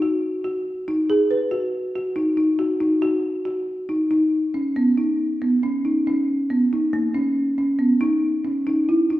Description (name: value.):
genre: contemporary instrumental, contemporary.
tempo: 139 BPM.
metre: 7/4.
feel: straight.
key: unclear.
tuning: A4 = 440 Hz.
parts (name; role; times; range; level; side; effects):
folk marimba with soft mallets; solo; 0.0-9.2 s; A#3 to B4; -19 LUFS; equal; none.
room: wet recital hall reverb, RT60 1.6 s.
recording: heard from further back in the room.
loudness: -19 LUFS.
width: side -15 dB against mid.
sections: 0.0-4.1 A section; 4.1-9.2 B section.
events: none.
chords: none.